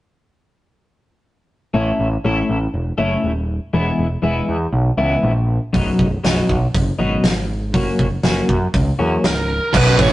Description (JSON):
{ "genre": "quiet-loud alternative rock", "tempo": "120 BPM", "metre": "4/4", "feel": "straight", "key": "unclear", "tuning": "A4 = 440 Hz", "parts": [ { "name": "twelve-string electric guitar", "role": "arpeggios", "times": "1.7-9.3 s", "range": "F#2 to A4", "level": "-19 LUFS", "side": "left 1 dB", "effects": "harmonic tremolo" }, { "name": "growling picked electric bass", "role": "bass", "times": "1.7-10.1 s", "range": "B0 to F#2", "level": "-20 LUFS", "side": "equal", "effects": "overdrive" }, { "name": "loose indie drum kit", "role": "drums", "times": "5.7-10.1 s", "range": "crash cymbal, hi-hat, kick drum, snare drum", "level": "-19 LUFS", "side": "equal", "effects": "none" }, { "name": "biting lead guitar", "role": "melody", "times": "9.3-10.1 s", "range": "A#4 to C#5", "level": "-18 LUFS", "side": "right 1 dB", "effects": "overdrive" }, { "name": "heavy high-gain guitar", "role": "riff", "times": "9.7-10.1 s", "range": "B1 to E3", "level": "-16 LUFS", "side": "right 6 dB", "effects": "distortion" }, { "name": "thick fuzz guitar", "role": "riff", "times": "9.7-10.1 s", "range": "B1 to E3", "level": "-17 LUFS", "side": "left 1 dB", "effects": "distortion" } ], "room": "light reverb", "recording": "rough rehearsal-room recording, tube saturation, nothing above 10.5 kHz", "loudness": "-16 LUFS", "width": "side -16 dB against mid", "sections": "1.7-9.7 A section", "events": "none", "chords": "1.7 A; 3.7 E; 5.7 B; 7.7 F#" }